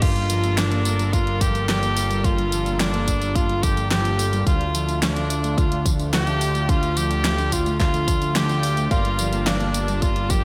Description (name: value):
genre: synthwave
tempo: 108 BPM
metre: 4/4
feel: straight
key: G minor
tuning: A4 = 437 Hz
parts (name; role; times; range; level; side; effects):
- bright tenor saxophone; melody; 0.0-10.4 s; D4 to G4; -28 LUFS; equal; delay, slapback echo
- airy dreamy lead; second line; 0.0-10.4 s; D4 to G4; -34 LUFS; equal; chorus, phaser
- lush unison pad; sustained chords; 0.0-10.4 s; G3 to A5; -33 LUFS; equal; chorus, phaser, vintage 12-bit sampler grit, sidechain pumping
- soft round pluck; arpeggios; 0.0-10.4 s; F3 to D4; -33 LUFS; equal; analog chorus, delay, slapback echo
- fat analog bass; bass; 0.0-10.4 s; G1 to D2; -26 LUFS; equal; none
- electronic kick drum; drums; 0.0-10.4 s; none; -24 LUFS; equal; none
- pop drum kit; drums; 0.0-10.4 s; crash cymbal, hi-hat, snare drum, tambourine; -29 LUFS; equal; slapback echo
- bright electric grand piano; stabs; 8.9-10.4 s; F4 to F5; -36 LUFS; equal; delay, slapback echo
room: light reverb, digital ambience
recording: none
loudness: -21 LUFS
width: mono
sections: 0.0-10.4 A section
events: none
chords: 0.0 Gm7; 4.5 Dm; 8.9 Gm7